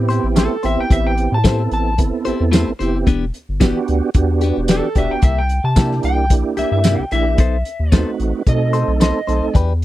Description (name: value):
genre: straight-eighth soul blues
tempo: 111 BPM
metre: 4/4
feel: straight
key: unclear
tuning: A4 = 440 Hz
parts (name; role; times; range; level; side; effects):
- tonewheel organ; accompaniment; 0.0-9.6 s; A3 to A4; -21 LUFS; right 5 dB; slow rotary speaker, overdrive, chorus vibrato
- round analog bass; bass; 0.0-9.8 s; E1 to C3; -19 LUFS; equal; none
- direct-recorded clean electric guitar; stabs; 0.1-9.7 s; C3 to C5; -22 LUFS; left 6 dB; phaser
- warm soul drum kit; drums; 0.1-9.8 s; hi-hat, kick drum, snare drum, tambourine; -15 LUFS; equal; none
- electric slide guitar; second line; 0.4-9.5 s; A4 to A5; -22 LUFS; left 1 dB; none
room: little or no reverb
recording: none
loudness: -14 LUFS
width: side -15 dB against mid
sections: 0.0-9.8 A section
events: electric slide guitar solo 0.0-9.8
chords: 0.0 Am7; 3.1 Em7; 5.2 C7; 7.4 B7b9